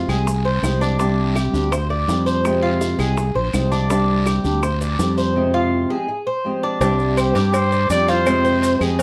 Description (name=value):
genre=latin, Cuban son and guajira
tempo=165 BPM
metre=4/4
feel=straight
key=unclear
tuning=A4 = 439 Hz
part: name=nylon-string guitar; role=accompaniment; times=0.0-9.0 s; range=C3 to G4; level=-25 LUFS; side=equal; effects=none
part: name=Cuban tres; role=arpeggios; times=0.0-9.0 s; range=D4 to F5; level=-25 LUFS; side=equal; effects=none
part: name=fretless electric bass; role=bass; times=0.0-9.0 s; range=Bb1 to G2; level=-23 LUFS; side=equal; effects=none
part: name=bongos and cowbell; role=percussion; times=0.1-9.0 s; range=none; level=-30 LUFS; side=equal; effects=none
part: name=claves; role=percussion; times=0.1-4.8, 7.2-9.0 s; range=none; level=-34 LUFS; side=equal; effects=none
part: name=guiro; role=percussion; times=0.1-9.0 s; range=none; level=-36 LUFS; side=equal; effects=none
part: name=maracas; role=percussion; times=0.1-9.0 s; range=none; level=-40 LUFS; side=equal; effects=none
part: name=breathy trumpet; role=melody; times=7.2-8.8 s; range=G4 to D5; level=-22 LUFS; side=equal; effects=plate reverb
room=moderate studio reverb, RT60 0.5 s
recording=none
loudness=-19 LUFS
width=mono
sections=0.0-6.8 A section; 6.8-9.0 B section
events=none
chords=0.0 Fmadd9; 1.0 Csus2; 2.5 Fmadd9; 3.9 Csus2; 5.4 Fmadd9; 6.8 Csus2; 8.3 Fmadd9